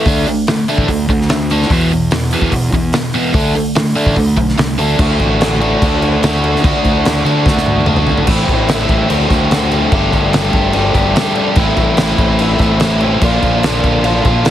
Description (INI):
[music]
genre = indie rock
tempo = 146 BPM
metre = 4/4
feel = straight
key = unclear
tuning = A4 = 439 Hz
[part]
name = biting overdriven guitar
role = riff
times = 0.0-14.5 s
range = E2 to G4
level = -14 LUFS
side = equal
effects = none
[part]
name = fuzz fingered electric bass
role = bass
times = 0.1-14.5 s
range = G1 to D3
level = -17 LUFS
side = equal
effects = overdrive
[part]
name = loose indie drum kit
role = drums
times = 0.1-14.5 s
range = crash cymbal, hi-hat, kick drum, snare drum, toms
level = -16 LUFS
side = equal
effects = none
[sound]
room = light reverb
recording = heavily compressed radio sound, multiband compression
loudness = -11 LUFS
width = side -11 dB against mid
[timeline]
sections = 0.0-5.0 A section; 5.0-8.3 B section; 8.3-14.5 C section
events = drum fill 7.5-8.3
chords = 0.1 D5; 1.7 E5; 3.3 D5; 5.0 D; 8.3 Am; 9.1 D7; 9.9 Gsus2; 11.6 Am; 13.2 Bb